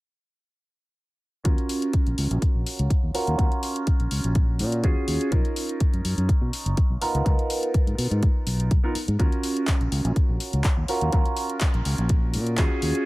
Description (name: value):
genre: filtered disco house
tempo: 124 BPM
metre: 4/4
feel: swing 54% on 16ths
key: Eb minor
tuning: A4 = 439 Hz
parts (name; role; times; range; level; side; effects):
- warm concert grand piano; accompaniment; 1.4-13.0 s; Cb4 to Bb4; -28 LUFS; right 2 dB; phaser, vintage 12-bit sampler grit, sidechain pumping, low-pass filter
- punchy analog drum machine; drums; 1.4-13.0 s; handclaps, hi-hat; -32 LUFS; left 2 dB; sidechain pumping on hats
- fingered electric bass; bass; 1.5-12.9 s; F#1 to B2; -25 LUFS; equal; sidechain pumping, low-pass filter
- electronic kick drum; drums; 1.5-12.7 s; none; -22 LUFS; equal; none
room: digital ambience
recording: none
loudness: -21 LUFS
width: side -20 dB against mid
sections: 1.5-13.1 A section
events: filter sweep 1.5-13.1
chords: 1.5 Ebm9; 5.3 Bmaj9#11; 7.0 Db13 (rootless); 9.2 Ebm9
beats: | 1.45 1.94 2.42 2.90 | 3.39 3.87 4.36 4.84 | 5.32 5.81 6.29 6.78 | 7.26 7.74 8.23 8.71 | 9.19 9.68 10.16 10.65 | 11.13 11.61 12.10 12.58